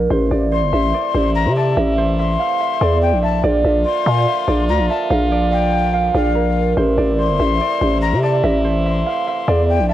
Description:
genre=hip hop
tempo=144 BPM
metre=4/4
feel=half-time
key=A phrygian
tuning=A4 = 444 Hz
part: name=concert harp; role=melody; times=0.0-9.9 s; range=Bb4 to G5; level=-20 LUFS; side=right 5 dB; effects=cassette tape, tape echo
part: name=growling 808-style bass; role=bass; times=0.0-9.9 s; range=G1 to C3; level=-17 LUFS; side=left 1 dB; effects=none
part: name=warm French horn section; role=sustained chords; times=0.1-9.9 s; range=C3 to F4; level=-27 LUFS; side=equal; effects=cassette tape
part: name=breathy jazz flute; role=second line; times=0.5-9.9 s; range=F5 to C6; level=-23 LUFS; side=left 10 dB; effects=cassette tape, tape echo
room=studio reverb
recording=home recording on cassette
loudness=-14 LUFS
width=side -13 dB against mid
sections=0.1-9.9 A section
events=none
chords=0.1 Am; 3.4 Bb; 6.8 Am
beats=| 0.10 0.52 0.94 1.35 | 1.77 2.19 2.60 3.02 | 3.44 3.85 4.27 4.69 | 5.11 5.52 5.94 6.36 | 6.77 7.19 7.61 8.02 | 8.44 8.86 9.27 9.69

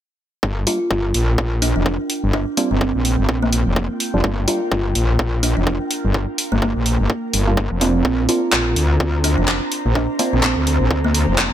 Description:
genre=bass house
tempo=126 BPM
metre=4/4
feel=swing 58% on 16ths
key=G minor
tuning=A4 = 436 Hz
part: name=metallic wobble bass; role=bass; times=0.4-11.5 s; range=F1 to D2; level=-18 LUFS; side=left 1 dB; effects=chorus, tube saturation, sidechain pumping
part: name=electronic kick drum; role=drums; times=0.4-11.5 s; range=none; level=-21 LUFS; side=equal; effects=overdrive, high-pass filter on kick
part: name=airy breathy pad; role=texture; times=1.6-11.5 s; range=D4 to Bb5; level=-30 LUFS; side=right 1 dB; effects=chorus, phaser, sidechain pumping
part: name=kalimba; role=melody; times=0.7-11.4 s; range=Bb3 to F4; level=-22 LUFS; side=right 2 dB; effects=dub echo
part: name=percussive organ stab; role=stabs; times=0.7-4.6, 7.5-10.3 s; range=G3 to F4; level=-26 LUFS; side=right 2 dB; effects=chorus, sidechain pumping, dub echo
part: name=garage drum kit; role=drums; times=0.7-11.5 s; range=handclaps, hi-hat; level=-20 LUFS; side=equal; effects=overdrive
room=little or no reverb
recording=none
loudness=-16 LUFS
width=side -11 dB against mid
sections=0.4-11.5 A section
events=fade-in on analog synth pad 0.4-11.5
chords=0.4 Gm7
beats=| 0.43 0.91 1.38 1.86 | 2.33 2.81 3.29 3.76 | 4.24 4.72 5.19 5.67 | 6.14 6.62 7.10 7.57 | 8.05 8.53 9.00 9.48 | 9.95 10.43 10.91 11.38

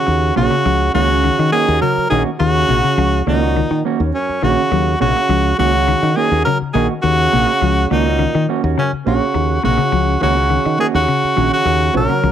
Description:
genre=afrobeat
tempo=104 BPM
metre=4/4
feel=straight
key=Eb dorian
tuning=A4 = 440 Hz
part: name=edgy tenor saxophone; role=melody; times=0.0-12.3 s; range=Db4 to Bb4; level=-17 LUFS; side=left 1 dB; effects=none
part: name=mellow trombone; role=second line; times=0.0-12.3 s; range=Gb2 to Gb3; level=-22 LUFS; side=right 10 dB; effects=none
part: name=clean electric guitar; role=arpeggios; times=0.0-12.3 s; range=C3 to Gb3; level=-22 LUFS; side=left 11 dB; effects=none
part: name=fingered electric bass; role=bass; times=0.1-12.3 s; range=Bb1 to Eb3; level=-18 LUFS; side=left 1 dB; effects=none
part: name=mellow electric guitar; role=stabs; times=0.4-12.1 s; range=Bb3 to Gb4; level=-22 LUFS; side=right 10 dB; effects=tape echo
room=light reverb, studio ambience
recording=1960s-style stereo with parts hard left and right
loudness=-13 LUFS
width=side -10 dB against mid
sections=0.0-12.3 A section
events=none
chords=0.0 Ebm7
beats=| 0.08 0.66 1.24 1.82 | 2.40 2.98 3.56 4.14 | 4.72 5.30 5.88 6.46 | 7.04 7.62 8.19 8.77 | 9.35 9.93 10.51 11.08 | 11.66 12.24

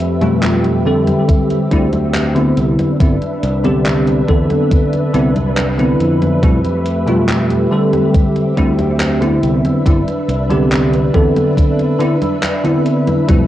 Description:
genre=vaporwave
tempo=70 BPM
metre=4/4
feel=straight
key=C major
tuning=A4 = 440 Hz
part: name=soft string machine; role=sustained chords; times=0.0-13.5 s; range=A3 to E5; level=-20 LUFS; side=equal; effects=ensemble chorus, vintage 12-bit sampler grit
part: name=overdriven fingered electric bass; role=bass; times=0.0-13.5 s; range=G1 to F2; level=-18 LUFS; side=equal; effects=none
part: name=gated 80s digital drum machine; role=drums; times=0.0-13.5 s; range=congas, handclaps, hi-hat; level=-22 LUFS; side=equal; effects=gated reverb
part: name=bell-like tine electric piano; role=accompaniment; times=0.2-13.4 s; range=B2 to A4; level=-15 LUFS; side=equal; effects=analog chorus, vintage 12-bit sampler grit, tape echo
part: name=electronic kick drum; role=drums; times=1.3-13.5 s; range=none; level=-13 LUFS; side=equal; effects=none
room=moderate spring reverb, RT60 2.3 s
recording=home recording on cassette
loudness=-12 LUFS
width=side -13 dB against mid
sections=0.0-13.5 A section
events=none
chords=0.0 Fmaj9#11; 1.3 D9sus4; 2.6 Cmaj9; 6.4 Fmaj9#11; 8.1 D9sus4; 9.4 Cmaj9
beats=0.43 1.29 2.14 | 3.00 3.86 4.71 5.57 | 6.43 7.29 8.14 9.00 | 9.86 10.71 11.57 12.43 | 13.29

